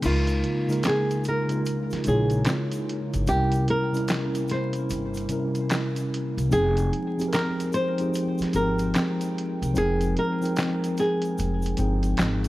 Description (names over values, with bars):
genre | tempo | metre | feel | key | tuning
lo-fi hip hop | 74 BPM | 4/4 | swing 64% on 16ths | unclear | A4 = 440 Hz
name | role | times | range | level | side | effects
mellow tine electric piano | accompaniment | 0.0-12.5 s | C3 to G5 | -26 LUFS | equal | medium stereo tremolo, cassette tape, low-pass filter
warbly tape-like pad | sustained chords | 0.0-12.5 s | C3 to G5 | -35 LUFS | left 1 dB | chorus, built-in reverb, low-pass filter
upright bass | bass | 0.0-12.5 s | F1 to Db2 | -26 LUFS | equal | none
lo-fi sampler-style drum kit | drums | 0.0-12.5 s | crash cymbal, handclaps, hi-hat, snare drum | -30 LUFS | equal | vintage 12-bit sampler grit
tube shaker | percussion | 0.0-12.5 s | none | -47 LUFS | left 3 dB | none
flamenco guitar | melody | 0.1-12.5 s | F4 to C5 | -28 LUFS | equal | low-pass filter, tape echo
room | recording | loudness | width
small room ambience | vinyl crackle | -22 LUFS | side -17 dB against mid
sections
0.0-12.5 A section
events
break 0.0-12.5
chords
0.0 Db69; 3.3 C7b9; 6.5 Fm9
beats
| 0.03 0.84 1.65 2.46 | 3.27 4.08 4.89 5.71 | 6.51 7.33 8.14 8.95 | 9.76 10.57 11.38 12.19